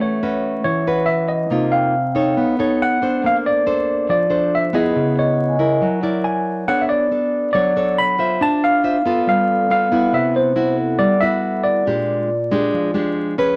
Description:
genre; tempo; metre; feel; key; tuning
bossa nova; 139 BPM; 4/4; straight; unclear; A4 = 440 Hz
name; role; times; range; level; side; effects
tine electric piano; melody; 0.0-13.1 s; C5 to B5; -21 LUFS; equal; none
nylon-string guitar; accompaniment; 0.0-13.6 s; Bb2 to E5; -21 LUFS; equal; none
vibraphone with medium mallets; accompaniment; 0.0-2.4, 5.2-6.0, 9.1-13.6 s; E4 to G#5; -29 LUFS; equal; none
room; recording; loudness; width
moderate club reverb, RT60 0.6 s; vinyl crackle; -18 LUFS; mono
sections
0.0-13.6 A section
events
none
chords
0.0 A69; 1.5 Cm7; 2.4 B9; 3.2 Bbmaj9; 5.0 C#m7; 5.8 F#7b13; 6.7 Bm9; 8.4 Dm9; 9.3 G9; 10.1 Cmaj7#11; 11.9 Bb6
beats
0.21 0.64 1.07 | 1.51 1.94 2.37 2.80 | 3.23 3.66 4.09 4.53 | 4.96 5.39 5.82 6.25 | 6.68 7.11 7.54 7.97 | 8.40 8.84 9.27 9.70 | 10.13 10.56 10.99 11.42 | 11.86 12.29 12.72 13.15

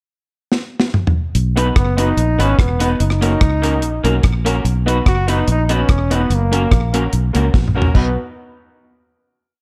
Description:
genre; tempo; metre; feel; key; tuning
ska; 145 BPM; 4/4; swing 54% on 8ths; B major; A4 = 440 Hz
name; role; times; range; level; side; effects
deep reggae drum kit; drums; 0.5-8.1 s; crash cymbal, hi-hat, kick drum, rim click, snare drum, toms; -19 LUFS; equal; none
fingered electric bass; bass; 1.3-8.2 s; E1 to C#2; -20 LUFS; equal; none
electric guitar through a small old amp; accompaniment; 1.6-8.1 s; A#3 to B4; -25 LUFS; equal; slapback echo
honky-tonk upright piano; stabs; 1.6-8.1 s; A#3 to B4; -26 LUFS; equal; slapback echo
bright trombone; melody; 1.8-8.2 s; A#3 to F#4; -23 LUFS; equal; slapback echo
room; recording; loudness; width
light reverb, small room ambience; none; -16 LUFS; mono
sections
0.0-1.3 pickup bar; 1.3-7.9 head; 7.9-9.6 final chord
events
drum fill 0.5-1.3, 7.5-7.9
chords
0.0 N.C.; 1.3 B; 3.0 F#; 4.6 B; 6.3 F#; 7.9 B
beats
0.10 0.52 0.93 | 1.34 1.76 2.17 2.58 | 3.00 3.41 3.82 4.24 | 4.65 5.06 5.47 5.88 | 6.30 6.71 7.12 7.54 | 7.95

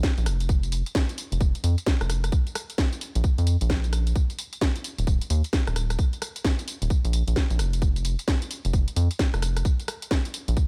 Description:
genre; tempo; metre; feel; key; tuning
UK garage, two-step garage; 131 BPM; 4/4; swing 62% on 16ths; unclear; A4 = 440 Hz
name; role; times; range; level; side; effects
electronic kick drum; drums; 0.0-10.7 s; none; -26 LUFS; equal; studio reverb
garage drum kit; drums; 0.0-10.7 s; hi-hat, rim click, snare drum, tambourine; -33 LUFS; equal; studio reverb
rubbery square bass; bass; 0.2-10.6 s; Eb1 to F2; -26 LUFS; equal; sidechain pumping
room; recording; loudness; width
little or no reverb; none; -25 LUFS; mono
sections
0.0-10.7 A section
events
none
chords
none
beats
0.03 | 0.49 0.95 1.41 1.86 | 2.32 2.78 3.24 3.70 | 4.16 4.61 5.07 5.53 | 5.99 6.45 6.90 7.36 | 7.82 8.28 8.73 9.19 | 9.65 10.11 10.57

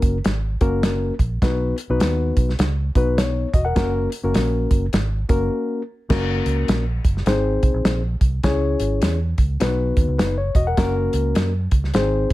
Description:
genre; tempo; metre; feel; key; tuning
uptempo 1960s-style soul; 103 BPM; 4/4; swing 62% on 8ths; F# mixolydian; A4 = 440 Hz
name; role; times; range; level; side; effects
mellow reed electric piano; accompaniment; 0.0-12.3 s; A#3 to F#5; -22 LUFS; left 3 dB; none
vintage muted fingered electric bass; bass; 0.0-12.3 s; E1 to F#2; -22 LUFS; right 1 dB; none
warm soul drum kit; drums; 0.0-12.3 s; crash cymbal, hi-hat, kick drum, snare drum; -20 LUFS; equal; none
room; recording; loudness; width
small room ambience; none; -18 LUFS; side -17 dB against mid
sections
0.0-6.1 A section; 6.1-12.3 B section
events
break 5.5-6.1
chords
0.0 F#; 1.4 B; 3.8 F#; 7.3 G#; 8.4 C#m; 9.6 B; 10.8 F#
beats
0.25 0.84 | 1.42 2.01 2.59 3.18 | 3.76 4.35 4.93 5.52 | 6.10 6.68 7.27 7.85 | 8.44 9.02 9.61 10.19 | 10.78 11.36 11.95

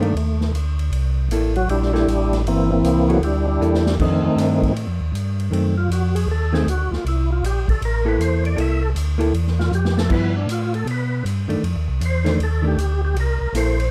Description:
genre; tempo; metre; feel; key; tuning
soul jazz organ trio; 157 BPM; 4/4; swing 64% on 8ths; C mixolydian; A4 = 441 Hz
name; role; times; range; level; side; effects
percussive tonewheel organ; melody; 0.0-13.9 s; Eb3 to E5; -24 LUFS; equal; slow rotary speaker, overdrive, chorus vibrato
hollow-body jazz guitar; accompaniment; 0.0-13.8 s; Eb3 to A4; -25 LUFS; equal; none
mellow tonewheel organ; bass; 0.0-13.9 s; G1 to B2; -22 LUFS; equal; slow rotary speaker
swinging big-band drum kit; drums; 0.0-13.9 s; crash cymbal, hi-hat, kick drum, ride cymbal, snare drum; -31 LUFS; equal; none
room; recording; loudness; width
moderate studio reverb, RT60 0.6 s; dark, warm production; -20 LUFS; mono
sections
0.0-13.9 A section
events
tonewheel organ solo 0.0-13.9; drum fill 3.6-4.0, 9.7-10.1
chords
0.0 F13 (rootless); 0.9 C13; 4.0 F13; 5.5 F#dim7; 7.0 C13; 10.1 G13; 11.6 F13; 13.2 C6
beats
0.15 0.54 | 0.92 1.30 1.69 2.07 | 2.46 2.84 3.22 3.61 | 3.99 4.37 4.76 5.14 | 5.52 5.90 6.29 6.67 | 7.05 7.43 7.81 8.20 | 8.58 8.96 9.34 9.72 | 10.11 10.49 10.87 11.25 | 11.63 12.02 12.40 12.78 | 13.16 13.55

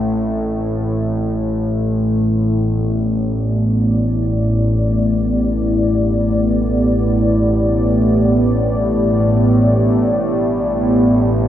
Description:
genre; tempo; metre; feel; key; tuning
ambient; free time; none; none; unclear; A4 = 440 Hz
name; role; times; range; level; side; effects
dark analog pad; sustained chords; 0.0-11.5 s; A2 to E5; -17 LUFS; equal; chorus
analog drone; drone; 0.0-11.5 s; A1 to A2; -17 LUFS; equal; chorus
room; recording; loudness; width
wet spring reverb, RT60 2.5 s; nothing above 7.9 kHz; -14 LUFS; side -11 dB against mid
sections
0.0-11.5 A section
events
fade-in on analog synth pad 0.0-11.5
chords
0.0 Am; 1.3 G/A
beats
free time

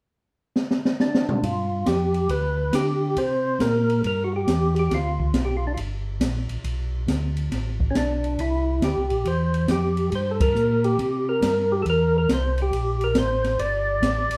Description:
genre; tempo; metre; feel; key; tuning
soul jazz organ trio; 138 BPM; 4/4; swing 66% on 8ths; unclear; A4 = 439 Hz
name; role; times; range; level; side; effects
open jazz drum kit; drums; 0.6-14.4 s; hi-hat, kick drum, ride cymbal, snare drum, toms; -28 LUFS; equal; none
percussive tonewheel organ; melody; 1.0-14.4 s; C#4 to D5; -26 LUFS; equal; slow rotary speaker, overdrive
mellow tonewheel organ; bass; 1.4-14.4 s; G1 to D3; -27 LUFS; equal; chorus vibrato, slow rotary speaker
room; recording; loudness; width
wet studio reverb, RT60 0.7 s; heard from further back in the room; -23 LUFS; mono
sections
0.0-1.4 A section; 1.4-14.4 B section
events
drum fill 0.6-1.4; band accent 10.3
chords
0.0 N.C.; 1.4 G7; 3.2 C7; 4.9 G7; 8.4 C7; 13.6 G5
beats
0.12 0.55 0.99 | 1.42 1.86 2.29 2.73 | 3.17 3.60 4.04 4.47 | 4.91 5.34 5.78 6.21 | 6.65 7.08 7.52 7.95 | 8.39 8.82 9.25 9.69 | 10.12 10.55 10.99 11.42 | 11.85 12.29 12.72 13.15 | 13.59 14.02

